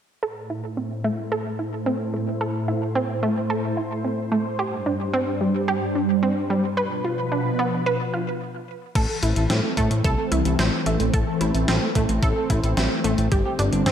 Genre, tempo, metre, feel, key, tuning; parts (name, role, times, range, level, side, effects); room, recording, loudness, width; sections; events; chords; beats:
synthwave; 110 BPM; 4/4; straight; A minor; A4 = 441 Hz
analog string pad; sustained chords; 0.5-13.9 s; G2 to C5; -26 LUFS; equal; ensemble chorus, phaser, sidechain pumping
analog pluck; arpeggios; 0.2-13.9 s; G3 to B4; -25 LUFS; right 1 dB; chorus, digital delay
clean electric guitar; riff; 9.0-13.9 s; G3 to A4; -31 LUFS; right 2 dB; lush chorus, low-pass filter, digital delay
fat analog bass; bass; 9.0-13.9 s; G1 to A2; -22 LUFS; equal
electronic kick drum; drums; 9.0-13.4 s; -24 LUFS; left 1 dB; overdrive
gated 80s digital drum machine; drums; 9.0-13.9 s; crash cymbal, hi-hat, snare drum; -28 LUFS; left 1 dB; gated reverb, gated reverb snare, overdrive
wet recital hall reverb, RT60 1.7 s, digital ambience; -21 LUFS; side -9 dB against mid
0.2-9.0 A section; 9.0-13.9 B section
filter sweep on analog synth pad 0.2-9.0; filter sweep on synth arpeggio sound 0.2-9.0; stop 8.4-9.0; filter sweep on clean electric guitar 9.0-13.9
0.2 Am; 4.6 Gsus4; 6.8 Bdim; 9.0 Am; 13.3 Gsus4
| 0.23 0.77 1.32 1.86 | 2.41 2.95 3.50 4.04 | 4.59 5.14 5.68 6.23 | 6.77 7.32 7.86 8.41 | 8.95 9.50 10.04 10.59 | 11.14 11.68 12.23 12.77 | 13.32 13.86